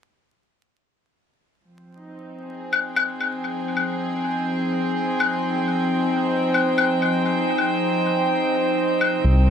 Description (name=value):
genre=future garage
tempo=126 BPM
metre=4/4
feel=swing 62% on 16ths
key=F minor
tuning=A4 = 439 Hz
part: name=rich chamber string section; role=sustained chords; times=1.6-9.5 s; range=C3 to G5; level=-25 LUFS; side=right 1 dB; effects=vintage 12-bit sampler grit
part: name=drifting glass-harmonics texture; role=texture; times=2.4-9.5 s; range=C4 to C5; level=-23 LUFS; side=equal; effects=chorus, built-in reverb
part: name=claves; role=drums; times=2.7-9.1 s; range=none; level=-23 LUFS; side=left 5 dB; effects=tape echo
part: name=dark detuned saw bass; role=bass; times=9.2-9.5 s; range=C2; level=-14 LUFS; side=equal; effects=none
room=moderate plate reverb, RT60 1.1 s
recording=echo-heavy mix, vinyl crackle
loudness=-19 LUFS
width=side -8 dB against mid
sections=1.6-9.5 A section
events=fade-in on string section 1.6-9.5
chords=1.6 Fm9